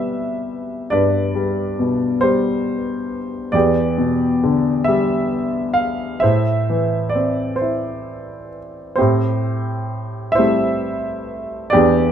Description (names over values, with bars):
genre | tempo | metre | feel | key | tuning
classical, lyrical solo piano | 44 BPM (dotted quarters) | 6/8 | rubato | A minor | A4 = 440 Hz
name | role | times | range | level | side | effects
warm concert grand piano | solo | 0.0-12.1 s | E2 to F5 | -17 LUFS | equal | none
room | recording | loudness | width
light reverb | close, detailed microphones | -16 LUFS | side -8 dB against mid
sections
0.0-9.0 A section; 9.0-12.1 A section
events
none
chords
0.0 Cmaj7; 3.5 Em7; 6.2 Am; 9.0 Am7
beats
| 0.93 2.24 | 3.54 4.88 | 6.23 7.60 | 8.98 10.36 | 11.73